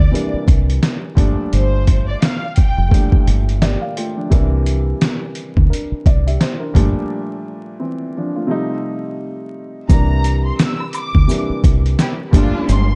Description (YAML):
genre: hip hop, boom-bap hip-hop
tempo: 86 BPM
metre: 4/4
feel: swing 58% on 16ths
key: unclear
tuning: A4 = 440 Hz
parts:
  - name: warm studio violin section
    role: melody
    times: 0.0-3.1, 9.9-13.0 s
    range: C5 to E6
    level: -29 LUFS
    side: equal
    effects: high-pass filter, low-pass filter, tape echo
  - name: dark baby grand piano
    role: accompaniment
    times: 0.0-13.0 s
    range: A2 to F5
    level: -25 LUFS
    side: equal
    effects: cassette tape, high-pass filter, low-pass filter
  - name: deep dub fingered electric bass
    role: bass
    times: 0.0-13.0 s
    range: F1 to D2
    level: -18 LUFS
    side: equal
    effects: none
  - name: trip hop sampler-style drum kit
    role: drums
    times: 0.2-12.9 s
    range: hi-hat, kick drum, snare drum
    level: -17 LUFS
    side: equal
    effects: overdrive
  - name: maracas and woodblock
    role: percussion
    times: 9.9-12.9 s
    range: none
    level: -33 LUFS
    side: equal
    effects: none
  - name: warm studio string section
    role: stabs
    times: 12.0-12.8 s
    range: Bb3 to G4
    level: -26 LUFS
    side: equal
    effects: high-pass filter, low-pass filter, tape echo
room: studio ambience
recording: dark, warm production, vinyl crackle, nothing above 10.4 kHz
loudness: -17 LUFS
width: mono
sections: 0.0-9.9 A section; 9.9-13.0 B section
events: break 7.1-9.9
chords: 0.0 C7; 1.2 Gm7; 4.3 C7; 6.8 Gm7; 8.5 F7; 9.9 C7; 12.3 Gm7